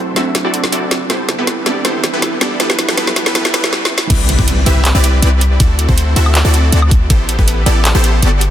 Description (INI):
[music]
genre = future bass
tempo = 160 BPM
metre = 4/4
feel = half-time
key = unclear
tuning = A4 = 440 Hz
[part]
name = felt-muted upright piano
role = accompaniment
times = 0.0-4.1 s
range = F#3 to E4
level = -23 LUFS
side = right 4 dB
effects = sidechain pumping, tape echo
[part]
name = supersaw stab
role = riff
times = 0.0-8.5 s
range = B3 to E5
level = -17 LUFS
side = equal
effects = sidechain pumping, low-pass filter, tape echo
[part]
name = riser and impact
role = sound effects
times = 1.4-5.6 s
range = none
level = -26 LUFS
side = equal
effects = none
[part]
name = trap drum kit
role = drums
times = 0.2-8.5 s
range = crash cymbal, handclaps, hi-hat, snare drum, woodblock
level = -17 LUFS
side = equal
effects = none
[part]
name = warm 808-style bass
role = bass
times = 4.1-8.5 s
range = G1 to D2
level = -12 LUFS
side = equal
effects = sidechain pumping
[part]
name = electronic kick drum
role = drums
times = 4.1-7.5 s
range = none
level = -12 LUFS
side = equal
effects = overdrive
[sound]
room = light reverb, digital ambience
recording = dense, heavily limited modern master, high-pass filter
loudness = -11 LUFS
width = side -11 dB against mid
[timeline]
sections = 0.0-4.1 A section; 4.1-8.5 B section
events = build-up 0.0-4.1; drum fill 0.0-3.7, 3.7-4.1; riser 1.4-3.7; filter sweep on supersaw synth 0.0-4.1; drop 4.1-8.5; impact 4.1-5.6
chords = 0.0 D9; 1.1 Am9; 2.4 Gadd9; 4.1 Cmaj9; 5.6 D9; 7.1 Am9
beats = 0.35 0.72 | 1.10 1.48 1.85 2.23 | 2.60 2.98 3.35 3.73 | 4.10 4.47 4.85 5.22 | 5.60 5.97 6.35 6.72 | 7.10 7.47 7.85 8.22